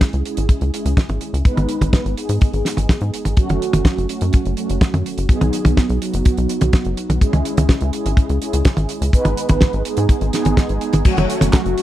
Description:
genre	italo disco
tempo	125 BPM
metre	4/4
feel	straight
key	F# dorian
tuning	A4 = 440 Hz
part	mellow synth brass	stabs	0.0-11.8 s	F#3 to B4	-22 LUFS	right 1 dB	chorus, phaser
part	damped 70s drum kit	drums	0.0-11.8 s	crash cymbal, handclaps, hi-hat, snare drum, toms	-20 LUFS	right 1 dB	studio reverb
part	kick drum	drums	0.0-11.6 s	none	-14 LUFS	equal	studio reverb
part	tight sequencer bass	bass	0.1-11.7 s	F#1 to G#2	-20 LUFS	equal	none
room	little or no reverb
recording	dry, close 1970s-style studio recording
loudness	-15 LUFS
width	side -14 dB against mid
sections	0.0-11.1 A section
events	filter sweep on analog polysynth 0.0-11.1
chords	0.0 C#m; 1.5 G#m; 3.4 F#m; 5.3 B; 7.2 C#m; 9.1 G#m; 11.1 F#m

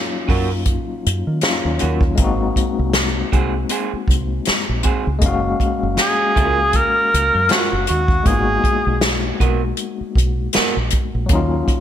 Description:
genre	R&B, neo-soul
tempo	79 BPM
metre	4/4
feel	swing 54% on 16ths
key	unclear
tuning	A4 = 440 Hz
part	overdriven tine electric piano	accompaniment	0.0-11.8 s	F#3 to E#5	-23 LUFS	left 5 dB	fast tremolo
part	electric guitar through a small old amp	second line	0.3-10.8 s	B3 to A#4	-25 LUFS	right 8 dB	none
part	deep dub fingered electric bass	bass	0.3-11.6 s	F#1 to D#3	-21 LUFS	right 1 dB	none
part	unplugged drum kit	drums	0.3-11.8 s	hi-hat, kick drum, snare drum	-19 LUFS	equal	gated reverb
part	breathy tenor saxophone	melody	6.0-9.0 s	F#4 to A#4	-17 LUFS	equal	none
room	moderate plate reverb, RT60 1.8 s, studio ambience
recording	bright 1980s-style digital production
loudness	-15 LUFS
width	side -10 dB against mid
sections	0.0-11.8 A section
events	none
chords	0.0 D#m7; 2.2 G#7; 5.2 F#maj7; 8.3 G#m9; 11.3 D#m7

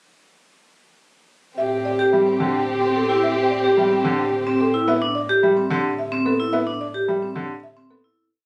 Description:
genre	classical, minimalist pattern music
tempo	109 BPM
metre	3/4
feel	straight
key	A minor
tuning	A4 = 441 Hz
part	buzzing marimba with medium mallets	melody	1.6-8.1 s	G4 to E5	-30 LUFS	equal	none
part	warm French horn	second line	1.6-4.7 s	G4	-24 LUFS	equal	none
part	warm studio violin section	sustained chords	1.6-4.7 s	C4 to G4	-28 LUFS	equal	none
part	warm double bass	bass	1.6-8.0 s	A2	-39 LUFS	equal	none
part	vibraphone with medium hard mallets	arpeggios	2.0-8.2 s	C4 to G4	-24 LUFS	equal	none
part	clear baby grand piano	accompaniment	2.1-8.1 s	D3 to B3	-28 LUFS	equal	none
room	moderate large studio reverb, RT60 1.1 s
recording	recorded on a phone in the room, studio reverb, compression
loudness	-20 LUFS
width	mono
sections	1.6-8.2 A section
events	fade-out 6.5-8.2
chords	1.6 Am7

